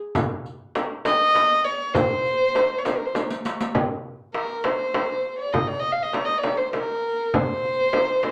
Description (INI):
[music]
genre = Arabic maqam ensemble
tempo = 67 BPM (dotted quarters)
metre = 6/8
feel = straight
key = C maqam bayati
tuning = A4 = 438 Hz
[part]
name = darbuka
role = percussion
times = 0.1-8.3 s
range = none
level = -32 LUFS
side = equal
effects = none
[part]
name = frame drum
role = percussion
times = 0.1-8.3 s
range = none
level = -30 LUFS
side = equal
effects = none
[part]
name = riq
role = percussion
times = 0.2-3.7 s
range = none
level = -36 LUFS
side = equal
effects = none
[part]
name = dark violin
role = melody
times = 1.1-8.3 s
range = Bb4 to F5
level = -24 LUFS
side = equal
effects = none
[sound]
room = wet club reverb, RT60 0.7 s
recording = none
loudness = -23 LUFS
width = mono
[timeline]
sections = 0.0-3.7 A section; 3.7-8.3 B section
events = drum fill 3.1-3.7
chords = none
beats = | 0.15 1.05 | 1.95 2.85 | 3.75 4.64 | 5.54 6.44 | 7.34 8.24